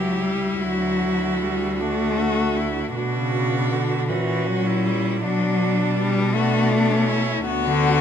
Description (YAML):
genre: classical, lyrical piece for cello ensemble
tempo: 53 BPM (dotted quarters)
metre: 6/8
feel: uneven beats, rubato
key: unclear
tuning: A4 = 440 Hz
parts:
  - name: rich cello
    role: melody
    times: 0.0-8.0 s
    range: C#4 to F#4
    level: -27 LUFS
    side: left 9 dB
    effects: none
  - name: rich cello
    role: second line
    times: 0.0-8.0 s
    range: B3 to G4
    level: -27 LUFS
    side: right 10 dB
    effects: none
  - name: warm cello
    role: accompaniment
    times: 0.0-8.0 s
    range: C#3 to A3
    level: -22 LUFS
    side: left 3 dB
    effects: none
  - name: rich cello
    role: bass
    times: 0.0-8.0 s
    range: C#2 to B2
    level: -26 LUFS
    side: right 3 dB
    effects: none
room: moderate recital hall reverb, RT60 1.4 s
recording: close, detailed microphones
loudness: -19 LUFS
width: side -8 dB against mid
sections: 0.0-8.0 A section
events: none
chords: 0.0 C#dim; 0.6 D; 2.9 Bm; 4.1 F#7/A#; 5.2 Bm7; 7.5 Bm/D